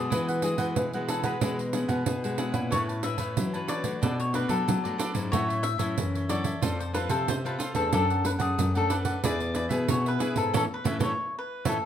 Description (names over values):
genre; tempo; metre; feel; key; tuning
samba and choro; 92 BPM; 4/4; straight; A major; A4 = 443 Hz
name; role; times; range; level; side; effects
cavaquinho; melody; 0.0-11.9 s; G#4 to E5; -31 LUFS; left 2 dB; none
cavaquinho; accompaniment; 0.0-11.8 s; D4 to A5; -36 LUFS; right 2 dB; none
nylon-string guitar; accompaniment; 0.0-11.8 s; A2 to B4; -34 LUFS; left 3 dB; none
nylon-string guitar; bass; 0.0-11.8 s; E2 to F#3; -30 LUFS; left 1 dB; none
pandeiro; percussion; 0.1-11.8 s; none; -31 LUFS; right 5 dB; none
room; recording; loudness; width
light reverb; close, detailed microphones; -25 LUFS; side -10 dB against mid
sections
0.0-11.9 A section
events
band accent 10.5-11.9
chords
0.1 Eadd9; 2.7 Aadd9; 4.0 Bm7; 5.3 A6; 6.6 F; 7.9 D/F#; 9.2 E; 10.5 A